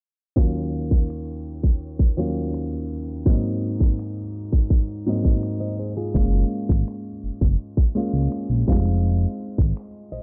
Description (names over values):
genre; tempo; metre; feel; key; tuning
contemporary R&B; 83 BPM; 4/4; straight; Eb dorian; A4 = 440 Hz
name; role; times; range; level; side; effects
clear grand piano; accompaniment; 0.4-10.2 s; Eb2 to F4; -29 LUFS; equal; none
trap drum kit; drums; 0.4-10.2 s; finger snaps, hi-hat, kick drum; -21 LUFS; equal; vintage 12-bit sampler grit
nylon-string guitar; arpeggios; 5.6-10.2 s; F4 to Eb5; -35 LUFS; equal; tape echo
smooth gliding synth bass; bass; 6.1-10.2 s; F1 to Db2; -23 LUFS; equal; none
room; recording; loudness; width
digital ambience; dark, warm production, low-pass filter; -23 LUFS; mono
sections
0.4-10.2 A section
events
filter sweep 0.4-10.2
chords
0.4 Ebm7; 3.3 Ab7; 6.1 Gbmaj7; 8.7 Fm7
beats
| 0.37 1.09 1.81 2.54 | 3.26 3.98 4.70 5.43 | 6.15 6.87 7.59 8.32 | 9.04 9.76